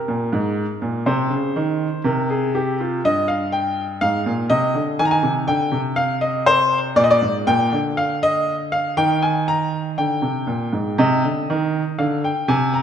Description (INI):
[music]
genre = classical, baroque-style two-part invention for grand piano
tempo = 60 BPM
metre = 4/4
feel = straight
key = unclear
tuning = A4 = 440 Hz
[part]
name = warm baby grand piano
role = solo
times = 0.0-12.8 s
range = G2 to Bb5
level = -17 LUFS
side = equal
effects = none
[sound]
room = moderate scoring stage reverb, RT60 2.1 s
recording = recorded in a church or concert hall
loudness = -17 LUFS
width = side -8 dB against mid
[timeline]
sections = 0.0-11.0 A section; 11.0-12.8 B section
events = none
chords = 0.0 N.C.; 1.1 Ab/C (rootless); 3.0 Eb/G; 5.0 F7(no3); 7.0 Bb7; 9.0 Eb; 11.0 Cm